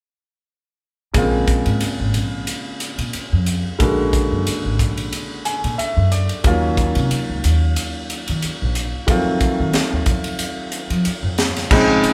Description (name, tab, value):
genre	electric jazz fusion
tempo	91 BPM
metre	4/4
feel	swing 55% on 16ths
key	Bb minor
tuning	A4 = 444 Hz
part	clear baby grand piano	accompaniment	1.1-12.1 s	Db3 to Ab5	-24 LUFS	equal	none
part	upright bass	bass	1.1-12.1 s	Ab1 to F3	-23 LUFS	equal	none
part	crisp fusion drum kit	drums	1.1-12.1 s	crash cymbal, hi-hat, kick drum, ride cymbal, snare drum	-24 LUFS	equal	none
room	moderate large studio reverb, RT60 1.2 s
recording	band playing live in one room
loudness	-19 LUFS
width	mono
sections	1.2-11.7 A section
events	grand piano fill 5.1-6.5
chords	1.2 Bbm9; 3.8 Bb7alt; 6.5 Ebm9; 9.1 F7b9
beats	| 1.16 1.82 2.48 3.14 | 3.81 4.47 5.13 5.79 | 6.45 7.11 7.77 8.43 | 9.09 9.75 10.41 11.06 | 11.72